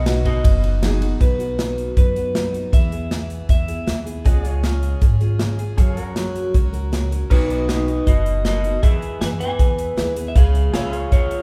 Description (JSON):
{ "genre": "honky-tonk and classic country", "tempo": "157 BPM", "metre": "4/4", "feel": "straight", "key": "B major", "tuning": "A4 = 440 Hz", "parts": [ { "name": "electric guitar through a small old amp", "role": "melody", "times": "0.0-4.0, 7.3-11.4 s", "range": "D#4 to G#5", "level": "-27 LUFS", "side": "equal", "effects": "none" }, { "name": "picked steel-string acoustic guitar", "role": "accompaniment", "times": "0.0-11.4 s", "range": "F#2 to A#4", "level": "-31 LUFS", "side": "equal", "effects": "none" }, { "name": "pedal steel guitar", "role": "sustained chords", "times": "0.0-1.2, 4.3-11.4 s", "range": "G#4 to F#5", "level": "-37 LUFS", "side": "equal", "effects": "none" }, { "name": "upright bass", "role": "bass", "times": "0.0-11.4 s", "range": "F#1 to F#2", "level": "-25 LUFS", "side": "equal", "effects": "none" }, { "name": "warm grand piano", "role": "accompaniment", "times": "0.1-1.1, 7.7-11.0 s", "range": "D#4 to C#5", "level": "-36 LUFS", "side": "equal", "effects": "none" }, { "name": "natural country drum kit", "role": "drums", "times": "0.1-11.4 s", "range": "crash cymbal, hi-hat, kick drum, ride cymbal, snare drum", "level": "-21 LUFS", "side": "equal", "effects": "none" } ], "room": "moderate recital hall reverb, RT60 1.8 s", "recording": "recorded in a church or concert hall", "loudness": "-19 LUFS", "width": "mono", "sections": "0.0-1.2 A section; 1.2-7.3 B section; 7.3-11.4 C section", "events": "none", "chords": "0.0 B; 2.7 E; 4.3 C#; 5.8 F#; 7.3 B; 8.8 E; 10.4 C#", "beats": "0.06 0.44 0.82 | 1.21 1.59 1.97 2.35 | 2.73 3.11 3.49 3.88 | 4.26 4.64 5.02 5.40 | 5.78 6.17 6.55 6.93 | 7.31 7.69 8.07 8.45 | 8.83 9.21 9.60 9.98 | 10.36 10.74 11.12" }